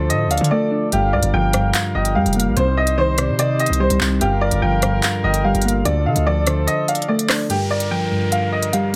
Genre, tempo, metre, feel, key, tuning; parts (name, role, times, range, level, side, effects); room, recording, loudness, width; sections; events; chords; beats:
hip hop, drill; 146 BPM; 4/4; half-time; G minor; A4 = 441 Hz
bright upright piano; melody; 0.0-9.0 s; G4 to G5; -24 LUFS; equal; low-pass filter
gliding portamento lead; second line; 0.0-7.5 s; C5 to G5; -29 LUFS; equal; chorus, tape echo
soft electric-piano-like synth keys; accompaniment; 0.0-9.0 s; G2 to D4; -24 LUFS; equal; chorus, low-pass filter
warm brass ensemble; sustained chords; 0.0-9.0 s; C3 to C5; -30 LUFS; equal
hard-hitting 808-style bass; bass; 0.0-6.7 s; F1 to D3; -23 LUFS; equal
drill drum kit; drums; 0.1-9.0 s; handclaps, hi-hat, rim click; -24 LUFS; equal
downlifter; sound effects; 7.5-9.0 s; -33 LUFS; equal
light reverb, digital ambience; -18 LUFS; mono
0.0-7.5 A section; 7.5-9.0 B section
drums muted 0.5-0.9; kick muted 6.7-7.5
0.0 Dm; 0.9 Gm7; 2.6 Cm; 4.2 Gm7; 5.9 Dm; 7.5 Gm7
0.10 0.51 | 0.92 1.33 1.75 2.16 | 2.57 2.98 3.39 3.80 | 4.21 4.62 5.03 5.44 | 5.86 6.27 6.68 7.09 | 7.50 7.91 8.32 8.73